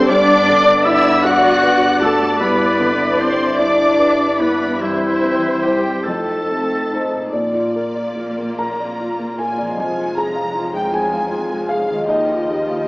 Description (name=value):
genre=cinematic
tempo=46-53 BPM (dotted quarters)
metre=6/8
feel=rubato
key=unclear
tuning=A4 = 440 Hz
part: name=rich studio violin section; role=melody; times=0.0-12.9 s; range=G4 to F#6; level=-27 LUFS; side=left 1 dB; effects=none
part: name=mellow small flute group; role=second line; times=0.0-7.3 s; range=E4 to F#5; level=-22 LUFS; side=left 1 dB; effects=none
part: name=warm oboe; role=second line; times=0.0-7.3 s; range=E4 to F#5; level=-20 LUFS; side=equal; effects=none
part: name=warm studio violin section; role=second line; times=0.0-12.9 s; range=E4 to Bb5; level=-25 LUFS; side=left 1 dB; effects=none
part: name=felt-muted upright piano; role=accompaniment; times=0.0-12.9 s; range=Eb2 to Bb5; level=-22 LUFS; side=equal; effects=none
part: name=warm studio viola section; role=accompaniment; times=0.0-12.9 s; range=F3 to D5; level=-23 LUFS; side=equal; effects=none
part: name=mellow French horn section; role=sustained chords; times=0.0-7.0 s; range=B3 to E4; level=-20 LUFS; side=left 1 dB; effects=none
part: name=concert harp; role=arpeggios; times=0.0-12.9 s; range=F2 to D5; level=-25 LUFS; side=left 1 dB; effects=none
part: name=warm studio cello section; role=bass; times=0.0-12.9 s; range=Eb2 to F#4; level=-24 LUFS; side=equal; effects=none
part: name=warm studio double bass section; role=bass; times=0.0-12.9 s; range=F1 to G2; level=-32 LUFS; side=right 1 dB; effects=none
room=wet scoring stage reverb, RT60 1.7 s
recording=worn, warbling old tape, cassette tape, warbly pitch drift, small speaker sound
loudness=-14 LUFS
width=side -22 dB against mid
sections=0.0-7.3 A section; 7.3-12.9 B section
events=none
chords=0.1 Bm/G; 2.4 Em7/G; 4.8 C/G; 6.1 F7; 7.3 Bb; 9.8 Fm; 12.1 Ebadd9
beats=| 0.09 1.24 | 2.40 3.59 | 4.81 6.05 | 7.33 8.59 | 9.79 10.94 | 12.08